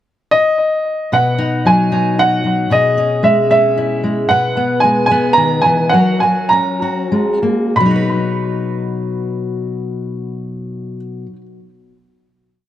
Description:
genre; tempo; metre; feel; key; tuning
indie folk with a building arrangement; 91-114 BPM; 3/4; straight; B major; A4 = 440 Hz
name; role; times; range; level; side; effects
bright upright piano; melody; 0.3-10.9 s; D#5 to B5; -14 LUFS; right 1 dB; analog delay
fingerpicked steel-string acoustic guitar; accompaniment; 1.1-11.5 s; B2 to B4; -16 LUFS; left 2 dB; analog delay
room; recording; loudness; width
moderate plate reverb, RT60 2.3 s; echo-heavy mix; -13 LUFS; side -12 dB against mid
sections
0.0-1.1 pickup bar; 1.1-7.8 verse; 7.8-11.7 final chord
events
slowing down 4.3-7.8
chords
0.0 N.C.; 1.1 B; 2.7 C#m/B; 4.3 G#m/B; 5.9 F#; 7.8 B

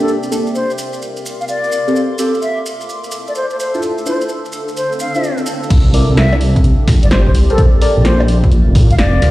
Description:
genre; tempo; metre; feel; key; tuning
UK garage, two-step garage; 128 BPM; 4/4; swing 66% on 16ths; unclear; A4 = 440 Hz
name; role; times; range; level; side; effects
bright wooden flute; melody; 0.0-9.3 s; A4 to F5; -20 LUFS; left 1 dB; digital delay
deep mellow chord stab; stabs; 0.0-8.0 s; Bb3 to D5; -19 LUFS; equal; chorus, phaser, digital delay
maracas; percussion; 0.0-5.7 s; none; -29 LUFS; right 2 dB; none
granular cloud pad; texture; 0.0-9.3 s; C4 to D6; -24 LUFS; equal; built-in reverb, sidechain pumping
swell; sound effects; 4.9-5.7 s; none; -27 LUFS; left 1 dB; none
dark detuned saw bass; bass; 5.7-9.3 s; F1 to Bb2; -12 LUFS; equal; sidechain pumping
electronic kick drum; drums; 5.7-8.9 s; none; -11 LUFS; equal; none
punchy analog drum machine; drums; 5.7-9.3 s; bongos, crash cymbal, hi-hat, snare drum; -20 LUFS; equal; none
room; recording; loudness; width
light reverb, digital ambience; played on a big sound system in a bare room, large studio reverb; -12 LUFS; side -17 dB against mid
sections
0.0-5.7 A section; 5.7-9.3 B section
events
swell 4.9-5.7; drop 5.7-9.3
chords
0.1 Bbmaj7; 2.0 Am7; 3.8 Dm9; 5.7 C9; 7.6 Bbmaj7

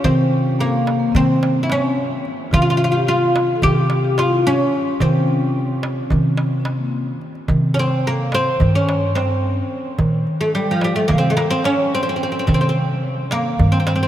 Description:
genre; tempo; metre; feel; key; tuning
Turkish makam ensemble; 217 BPM (eighths); 9/8; straight; C makam hicaz; A4 = 440 Hz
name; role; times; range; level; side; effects
oud; melody; 0.0-14.1 s; F3 to G4; -20 LUFS; equal; none
vibraphone with medium mallets; second line; 0.0-7.0 s; Bb3 to A4-40c; -24 LUFS; left 4 dB; none
upright bass; bass; 0.0-14.1 s; G2 to C3; -20 LUFS; equal; none
darbuka; percussion; 0.0-14.0 s; none; -22 LUFS; right 1 dB; none
room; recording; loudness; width
wet cathedral reverb, RT60 6.5 s; in a vast, echoing space; -16 LUFS; side -11 dB against mid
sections
0.0-7.5 A section; 7.5-14.1 B section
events
none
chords
none

